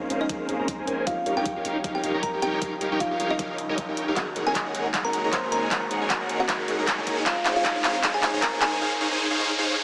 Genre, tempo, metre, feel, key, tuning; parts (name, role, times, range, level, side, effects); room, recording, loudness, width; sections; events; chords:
future bass; 155 BPM; 4/4; swing 55% on 16ths, half-time; A4 = 440 Hz
buzzing kalimba; melody; 0.0-8.8 s; Eb4 to C6; -31 LUFS; equal; sidechain pumping, digital delay
airy breathy pad; sustained chords; 0.0-8.8 s; Db3 to Gb4; -40 LUFS; equal; chorus, sidechain pumping
supersaw chords; riff; 0.0-9.8 s; Db4 to Bb5; -30 LUFS; equal; phaser, sidechain pumping, low-pass filter
long sustained 808-style bass; bass; 0.0-8.8 s; Ab1 to Ab2; -46 LUFS; equal; sidechain pumping
riser and reverse cymbal; sound effects; 1.5-9.8 s; -35 LUFS; equal
dubstep drum kit; drums; 0.1-8.7 s; handclaps, hi-hat; -30 LUFS; equal; overdrive, studio reverb
electronic kick drum; drums; 0.3-8.5 s; -38 LUFS; equal; overdrive, studio reverb
moderate shimmer reverb, RT60 7.8 s; high-pass filter, small speaker sound; -25 LUFS; mono
0.0-9.8 A section
build-up 0.0-9.8; filter sweep on supersaw synth 0.0-9.8; filter sweep 0.0-9.8; riser 1.5-9.8; drum fill 4.2-8.8; reverse cymbal 9.6
0.0 Bbm9; 1.1 Eb9/Bb; 4.2 Ab9sus4; 7.3 Dbmaj9